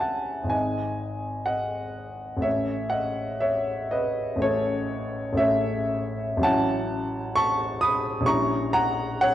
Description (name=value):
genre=classical, romantic nocturne for solo piano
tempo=53-67 BPM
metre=4/4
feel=rubato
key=unclear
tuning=A4 = 440 Hz
part: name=warm grand piano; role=solo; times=0.0-9.3 s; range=G#1 to D#6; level=-23 LUFS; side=equal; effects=none
room=moderate concert hall reverb, RT60 1.7 s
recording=worn, warbling old tape, cassette tape, warbly pitch drift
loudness=-23 LUFS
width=side -12 dB against mid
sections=0.0-9.3 A section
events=none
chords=0.0 C#m; 0.5 G#; 2.5 A; 6.5 F#m7/A; 8.3 A#dim7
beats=0.53 1.50 | 2.45 3.42 4.43 5.40 | 6.46 7.38 8.29 9.24